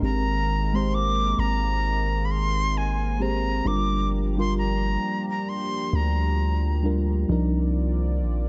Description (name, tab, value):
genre	R&B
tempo	66 BPM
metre	4/4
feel	swing 58% on 16ths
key	C minor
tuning	A4 = 440 Hz
part	breathy bright jazz flute	melody	0.0-6.9 s	Ab5 to D6	-31 LUFS	equal	tape echo
part	mellow FM electric piano	accompaniment	0.0-8.5 s	F3 to C5	-31 LUFS	equal	chorus, phaser
part	warm analog pad	sustained chords	0.0-8.5 s	Eb3 to D5	-35 LUFS	equal	chorus
part	long sustained 808-style bass	bass	0.0-8.5 s	G1 to D2	-27 LUFS	equal	none
room	light reverb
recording	nothing above 7.6 kHz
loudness	-24 LUFS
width	mono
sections	0.0-7.3 A section; 7.3-8.5 B section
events	none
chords	0.0 Abmaj9; 3.7 Gm7; 7.3 Cm11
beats	| 0.03 0.94 1.84 2.75 | 3.66 4.57 5.48 6.39 | 7.30 8.21